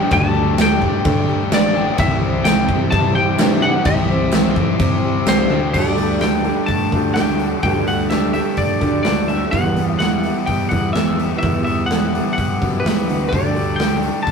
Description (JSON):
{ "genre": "rock, shoegaze and dream pop", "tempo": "127 BPM", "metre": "4/4", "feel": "straight", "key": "unclear", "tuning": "A4 = 441 Hz", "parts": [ { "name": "twelve-string electric guitar", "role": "melody", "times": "0.0-14.3 s", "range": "B4 to A5", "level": "-22 LUFS", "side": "left 3 dB", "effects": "none" }, { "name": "picked twelve-string acoustic guitar", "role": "arpeggios", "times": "0.0-14.3 s", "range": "E3 to A4", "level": "-26 LUFS", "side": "left 3 dB", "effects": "none" }, { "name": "biting overdriven guitar", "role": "riff", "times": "0.0-14.3 s", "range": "E2 to G4", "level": "-25 LUFS", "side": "left 5 dB", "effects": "none" }, { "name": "electric guitar through a small old amp", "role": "riff", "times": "0.0-14.3 s", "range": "C3 to A4", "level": "-23 LUFS", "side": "right 3 dB", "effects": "none" }, { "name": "overdriven semi-hollow guitar", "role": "riff", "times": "0.0-5.7 s", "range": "C3 to D4", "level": "-27 LUFS", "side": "left 1 dB", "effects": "none" }, { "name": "picked electric bass", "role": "bass", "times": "0.1-14.1 s", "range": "A1 to D3", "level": "-24 LUFS", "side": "equal", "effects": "none" }, { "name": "big rock drum kit", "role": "drums", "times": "0.1-14.3 s", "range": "crash cymbal, hi-hat, kick drum, snare drum", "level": "-19 LUFS", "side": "right 1 dB", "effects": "none" }, { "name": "tambourine", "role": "percussion", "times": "0.6-5.4 s", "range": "none", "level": "-33 LUFS", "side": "right 4 dB", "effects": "none" } ], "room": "moderate studio reverb, RT60 0.5 s", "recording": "rough rehearsal-room recording, tube saturation", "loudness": "-15 LUFS", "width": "side -6 dB against mid", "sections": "0.0-5.7 A section; 5.7-14.3 B section", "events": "none", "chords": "0.0 Dsus4; 2.0 C; 5.7 Dsus4; 9.5 Emadd9; 13.3 Dsus4", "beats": "| 0.12 0.58 1.05 1.52 | 1.99 2.45 2.92 3.39 | 3.86 4.33 4.80 5.27 | 5.74 6.21 6.68 7.16 | 7.63 8.10 8.58 9.05 | 9.53 10.00 10.48 10.95 | 11.43 11.90 12.37 12.85 | 13.32 13.80 14.27" }